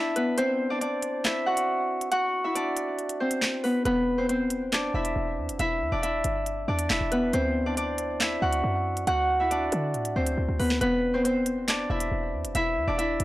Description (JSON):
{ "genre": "hip hop, drill", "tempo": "138 BPM", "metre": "4/4", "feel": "half-time", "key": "unclear", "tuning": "A4 = 440 Hz", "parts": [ { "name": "Celtic harp", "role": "melody", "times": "0.0-13.2 s", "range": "B3 to F#5", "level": "-25 LUFS", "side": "equal", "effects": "analog delay" }, { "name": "drill drum kit", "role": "drums", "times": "0.2-13.2 s", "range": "handclaps, hi-hat, snare drum", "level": "-29 LUFS", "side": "equal", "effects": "none" }, { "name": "short 808-style bass", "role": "bass", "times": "3.9-13.2 s", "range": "E1 to D3", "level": "-31 LUFS", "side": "equal", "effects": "none" } ], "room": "digital ambience", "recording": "dry, gritty hardware recording, cassette tape", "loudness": "-24 LUFS", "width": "side -17 dB against mid", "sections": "0.0-10.8 A section; 10.8-13.2 B section", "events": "break 0.0-3.9; drum fill 10.4-10.8", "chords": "0.4 Dadd9; 3.9 E7(no3); 7.3 Dadd9; 10.8 E7(no3)", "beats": "| 0.38 0.81 1.25 1.68 | 2.12 2.55 2.98 3.42 | 3.85 4.29 4.72 5.16 | 5.59 6.03 6.46 6.90 | 7.33 7.77 8.20 8.64 | 9.07 9.51 9.94 10.38 | 10.81 11.24 11.68 12.12 | 12.55 12.98" }